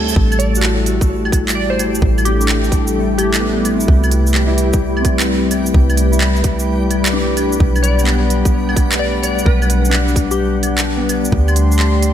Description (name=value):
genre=future garage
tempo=129 BPM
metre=4/4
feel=swing 66% on 16ths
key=A dorian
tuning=A4 = 437 Hz
part: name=mellow electric guitar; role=accompaniment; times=0.0-11.5 s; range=A3 to A4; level=-24 LUFS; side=equal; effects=ensemble chorus, sidechain pumping, ping-pong delay
part: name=dark analog pad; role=sustained chords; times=0.0-12.1 s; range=G3 to C6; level=-19 LUFS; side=left 2 dB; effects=chorus, sidechain pumping
part: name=soft 808-style bass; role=bass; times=0.0-12.1 s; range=A1 to D2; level=-17 LUFS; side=equal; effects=sidechain pumping
part: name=backwards swelling texture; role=texture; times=0.0-12.1 s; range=G3 to A4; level=-25 LUFS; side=left 2 dB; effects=built-in reverb
part: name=organic electronic drum kit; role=drums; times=0.1-12.1 s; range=claves, handclaps, hi-hat, shaker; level=-21 LUFS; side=right 1 dB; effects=overdrive
part: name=electronic kick drum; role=drums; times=0.2-11.4 s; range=none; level=-15 LUFS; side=equal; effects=overdrive
part: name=glassy wavetable pluck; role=melody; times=0.4-3.6, 7.8-10.9 s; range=G4 to D5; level=-23 LUFS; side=left 2 dB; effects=chorus, cassette tape, ping-pong delay
room=light reverb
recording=none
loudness=-12 LUFS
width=side -10 dB against mid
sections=0.0-12.1 A section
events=none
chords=0.2 A7(no3); 3.9 Cmaj7; 7.6 Gmaj7/B; 11.3 D7sus4